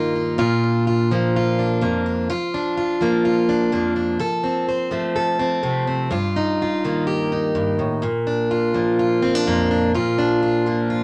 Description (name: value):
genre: highlife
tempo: 126 BPM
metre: 4/4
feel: straight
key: Bb major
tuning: A4 = 439 Hz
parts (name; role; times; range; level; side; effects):
- picked plugged-in steel-string acoustic guitar; solo; 0.0-11.0 s; F2 to C5; -20 LUFS; equal; none
room: moderate studio reverb, RT60 0.6 s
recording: none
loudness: -20 LUFS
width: mono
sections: 0.4-11.0 A section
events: none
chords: 0.4 Bb; 4.2 F; 6.1 Ebadd9/G; 8.0 Bb